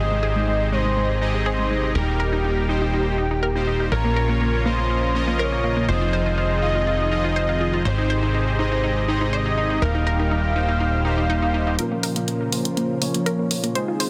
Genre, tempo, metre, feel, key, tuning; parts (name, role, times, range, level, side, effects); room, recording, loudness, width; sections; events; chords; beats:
progressive house; 122 BPM; 4/4; straight; Bb dorian; A4 = 440 Hz
expressive portamento lead; melody; 0.0-14.1 s; G4 to F5; -29 LUFS; equal; lush chorus, digital delay
lush unison pad; sustained chords; 0.0-14.1 s; Bb2 to C5; -31 LUFS; equal; chorus, vintage 12-bit sampler grit
unison pluck; arpeggios; 0.0-14.1 s; Ab3 to C5; -30 LUFS; equal; delay
soft supersaw; stabs; 0.0-14.1 s; Ab2 to Eb5; -27 LUFS; equal; low-pass filter, delay
plucky analog bass; bass; 0.0-11.8 s; Eb1 to Bb1; -26 LUFS; equal
electronic hi-hat; drums; 11.8-14.1 s; -28 LUFS; equal
light reverb; dense, heavily limited modern master; -22 LUFS; mono
0.0-11.8 A section; 11.8-14.1 B section
build-up 11.8-14.1; filter sweep on supersaw synth 11.8-14.1; filter sweep on analog synth pad 11.8-14.1; filter sweep on analog synth lead 11.8-14.1
0.0 Abmaj7; 2.0 Eb; 3.9 Bbm; 5.9 Fm7; 7.9 Abmaj7; 9.8 Eb; 11.8 Bbm
0.48 0.97 1.46 | 1.95 2.44 2.94 3.43 | 3.92 4.41 4.90 5.39 | 5.89 6.38 6.87 7.36 | 7.85 8.35 8.84 9.33 | 9.82 10.31 10.80 11.30 | 11.79 12.28 12.77 13.26 | 13.76